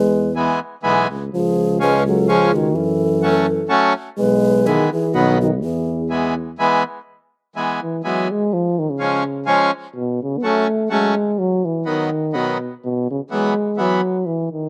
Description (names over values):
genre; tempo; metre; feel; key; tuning
alpine folk, alpine dance band; 125 BPM; 3/4; swing 55% on 8ths; E major; A4 = 440 Hz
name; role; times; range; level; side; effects
mellow euphonium; melody; 0.0-14.7 s; B2 to B3; -22 LUFS; equal; slapback echo
breathy mellow bass ocarina; second line; 0.0-6.1 s; F#4 to B4; -23 LUFS; equal; slapback echo
mellow tuba; bass; 0.0-6.6 s; B1 to F#2; -24 LUFS; equal; none
accordion; accompaniment; 0.4-14.0 s; D#3 to C#4; -21 LUFS; equal; slapback echo
room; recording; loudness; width
light reverb; recorded outdoors, with no room sound; -19 LUFS; mono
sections
0.0-7.1 A section; 7.1-14.7 B section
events
none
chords
0.0 E; 1.3 C#; 2.8 F#m; 4.2 E/B; 5.1 B; 5.6 E; 8.5 C#; 10.0 F#m; 11.4 B; 12.8 Esus2